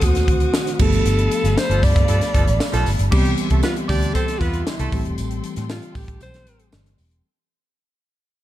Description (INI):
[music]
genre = polished 1980s jazz-funk pop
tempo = 116 BPM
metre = 4/4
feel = straight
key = C major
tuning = A4 = 436 Hz
[part]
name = breathy alto saxophone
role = melody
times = 0.0-6.7 s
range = E4 to D5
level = -25 LUFS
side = right 1 dB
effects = none
[part]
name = mellow tine electric piano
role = accompaniment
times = 0.0-7.3 s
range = Eb3 to G4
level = -25 LUFS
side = left 1 dB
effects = analog chorus
[part]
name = warm studio string section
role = sustained chords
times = 0.0-7.2 s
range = G4 to Eb6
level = -34 LUFS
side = left 2 dB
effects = none
[part]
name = vintage muted fingered electric bass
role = bass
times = 0.0-7.2 s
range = E1 to A2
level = -21 LUFS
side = equal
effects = none
[part]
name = crisp fusion drum kit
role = drums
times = 0.0-7.2 s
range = crash cymbal, hi-hat, kick drum, snare drum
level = -21 LUFS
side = equal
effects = none
[part]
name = tambourine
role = percussion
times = 0.0-7.2 s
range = none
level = -39 LUFS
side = right 10 dB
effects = none
[part]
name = warm horn section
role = second line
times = 1.7-5.0 s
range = F3 to D5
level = -28 LUFS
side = right 4 dB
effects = none
[sound]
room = small room reverb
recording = dark, warm production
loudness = -16 LUFS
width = side -14 dB against mid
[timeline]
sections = 0.0-3.1 A section; 3.1-7.2 B section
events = band accent 1.1-3.1; fade-out 3.1-7.2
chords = 0.0 D7b9; 0.8 G9; 3.1 Cmaj7; 4.9 Am7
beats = 0.03 0.54 | 1.06 1.57 2.09 2.60 | 3.12 3.63 4.15 4.66 | 5.18 5.70 6.21 6.73